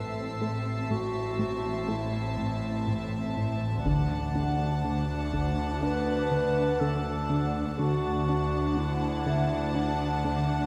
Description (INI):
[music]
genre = cinematic, suspense film score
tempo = 61 BPM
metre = 4/4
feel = straight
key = unclear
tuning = A4 = 440 Hz
[part]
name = warm symphonic violin section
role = melody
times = 0.0-10.7 s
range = A5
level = -41 LUFS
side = equal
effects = none
[part]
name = warm clarinet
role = second line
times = 0.0-10.7 s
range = D4 to B4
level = -36 LUFS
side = equal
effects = none
[part]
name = warm symphonic violin section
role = second line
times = 0.0-10.7 s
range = E5 to F#5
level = -41 LUFS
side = equal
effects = none
[part]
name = dark symphonic viola section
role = accompaniment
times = 0.0-10.7 s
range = C4 to D4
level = -39 LUFS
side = equal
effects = none
[part]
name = plucky analog bass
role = riff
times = 0.0-10.5 s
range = A2 to D4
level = -36 LUFS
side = equal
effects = none
[part]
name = rich symphonic double bass section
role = bass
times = 0.0-10.7 s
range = A1 to D2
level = -36 LUFS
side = equal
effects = none
[part]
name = warm symphonic cello section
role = bass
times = 0.0-10.7 s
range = D2 to A2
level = -37 LUFS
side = equal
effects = none
[part]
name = bowed-like drone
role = drone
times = 0.0-10.7 s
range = A1 to D2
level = -40 LUFS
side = equal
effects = none
[part]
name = felt-muted upright piano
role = texture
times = 0.0-10.7 s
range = E5 to F#5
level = -44 LUFS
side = equal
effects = none
[part]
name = warm symphonic violin section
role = texture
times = 0.0-3.3 s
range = E6 to C7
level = -49 LUFS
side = equal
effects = none
[part]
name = taiko ensemble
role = drums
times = 3.9-5.8 s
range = none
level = -39 LUFS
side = equal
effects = none
[sound]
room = wet scoring stage reverb, RT60 2.0 s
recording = heard from further back in the room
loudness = -29 LUFS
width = mono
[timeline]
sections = 0.0-10.7 A section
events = none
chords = 0.0 Am; 3.9 D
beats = 0.90 1.89 2.87 | 3.85 4.84 5.82 6.81 | 7.79 8.77 9.76